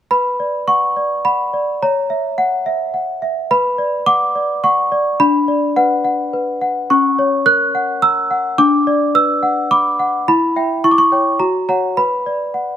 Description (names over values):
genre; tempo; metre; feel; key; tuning
classical, lullaby for celesta; 106 BPM; 3/4; straight; B minor; A4 = 440 Hz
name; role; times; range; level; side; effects
worn celesta; solo; 0.1-12.8 s; C#4 to F#6; -14 LUFS; equal; none
room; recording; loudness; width
light reverb; close, detailed microphones; -14 LUFS; side -10 dB against mid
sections
0.1-12.8 A section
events
none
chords
0.1 Bm; 1.8 F#7/C#; 3.5 Bm; 5.2 Bm/D; 6.9 F#7/C#; 8.6 Bm/D; 10.3 Em; 10.8 C#dim/E; 11.4 F#; 12.0 Bm